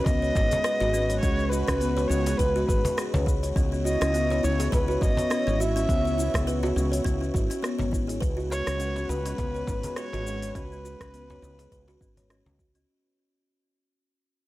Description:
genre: organic downtempo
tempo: 103 BPM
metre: 4/4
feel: swing 56% on 16ths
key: unclear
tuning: A4 = 440 Hz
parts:
  - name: dark kamancheh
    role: melody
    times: 0.0-12.3 s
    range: B4 to E5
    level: -30 LUFS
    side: equal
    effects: vintage 12-bit sampler grit, tape echo
  - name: warm analog pad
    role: sustained chords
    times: 0.0-12.8 s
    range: G#3 to C#5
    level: -34 LUFS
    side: equal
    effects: chorus, sidechain pumping
  - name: buzzing kalimba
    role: arpeggios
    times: 0.1-12.8 s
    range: B3 to C#5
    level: -30 LUFS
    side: left 1 dB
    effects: tape echo
  - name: woody fretless electric bass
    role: bass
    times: 0.1-12.8 s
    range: G#1 to C#2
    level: -28 LUFS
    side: equal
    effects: sidechain pumping
  - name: afro-pop drum kit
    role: drums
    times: 0.1-12.9 s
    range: hi-hat, rim click, shaker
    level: -35 LUFS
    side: equal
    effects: none
  - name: electronic kick drum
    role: drums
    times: 0.1-12.7 s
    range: none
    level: -27 LUFS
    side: equal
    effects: none
  - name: cajon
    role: percussion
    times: 0.1-12.6 s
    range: none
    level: -34 LUFS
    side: equal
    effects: none
room: light reverb, digital ambience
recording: dry, gritty hardware recording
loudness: -23 LUFS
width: side -17 dB against mid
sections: 0.0-12.9 A section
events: fade-out 6.7-12.9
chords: 0.0 G#m7; 3.6 C#m7; 8.2 G#m7

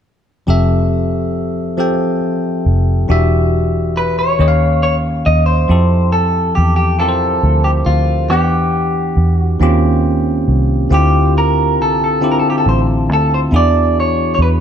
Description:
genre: slow six-eight R&B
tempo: 46 BPM (dotted quarters)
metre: 6/8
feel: straight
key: F major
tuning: A4 = 441 Hz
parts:
  - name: bell-like tine electric piano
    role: accompaniment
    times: 0.5-14.6 s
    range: D3 to G5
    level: -16 LUFS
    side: left 1 dB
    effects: phaser
  - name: vintage muted fingered electric bass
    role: bass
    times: 0.5-14.6 s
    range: E1 to F2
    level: -15 LUFS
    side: equal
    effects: none
  - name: electric guitar at the edge of break-up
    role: melody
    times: 4.0-14.5 s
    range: F4 to Eb5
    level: -16 LUFS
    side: equal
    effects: spring reverb
room: digital ambience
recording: none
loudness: -12 LUFS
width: side -8 dB against mid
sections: 0.5-5.7 A section; 5.7-14.6 B section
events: none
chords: 0.5 Fmaj9; 3.1 Em9; 4.4 Eb9; 5.7 Fmaj9; 8.3 Em9; 9.6 Eb13; 10.9 Dm11; 13.5 E9

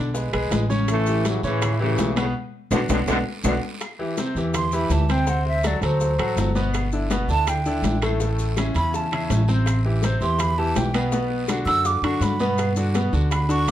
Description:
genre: latin, salsa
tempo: 164 BPM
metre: 4/4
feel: straight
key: D major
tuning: A4 = 440 Hz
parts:
  - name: bright grand piano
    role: accompaniment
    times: 0.0-13.7 s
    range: A2 to C#5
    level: -26 LUFS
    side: equal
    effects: none
  - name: upright bass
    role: bass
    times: 0.0-13.7 s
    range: G1 to A2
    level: -23 LUFS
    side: equal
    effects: none
  - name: bongos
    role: percussion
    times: 0.1-13.7 s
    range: none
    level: -34 LUFS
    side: left 6 dB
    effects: none
  - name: maracas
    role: percussion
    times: 0.1-13.7 s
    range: none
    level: -39 LUFS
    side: left 5 dB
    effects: none
  - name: congas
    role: percussion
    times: 0.2-13.7 s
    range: none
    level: -30 LUFS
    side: left 4 dB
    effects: none
  - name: guiro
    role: percussion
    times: 0.2-13.7 s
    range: none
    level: -40 LUFS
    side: right 4 dB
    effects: none
  - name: claves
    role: percussion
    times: 0.3-13.5 s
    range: none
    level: -39 LUFS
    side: equal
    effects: none
  - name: timbales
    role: percussion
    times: 0.3-13.7 s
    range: none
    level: -32 LUFS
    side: right 6 dB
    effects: none
  - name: bright trombone section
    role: melody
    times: 0.9-3.5 s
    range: A2 to A3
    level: -25 LUFS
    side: left 1 dB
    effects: none
  - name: breathy mellow silver concert flute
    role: melody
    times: 4.6-13.7 s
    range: C5 to E6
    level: -25 LUFS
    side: right 2 dB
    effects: none
room: moderate studio reverb, RT60 0.7 s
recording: dark, warm production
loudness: -20 LUFS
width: side -12 dB against mid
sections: 0.0-3.8 A section; 3.8-13.7 B section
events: band accent 2.3-3.8; drum fill 2.7-3.8; flute solo 3.8-13.7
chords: 0.0 E7 (rootless); 0.9 A7; 2.3 Bm7; 3.8 D9sus4; 5.3 D7; 6.7 G6; 8.2 A; 9.7 Am7; 11.1 Bm; 12.6 Gmaj7

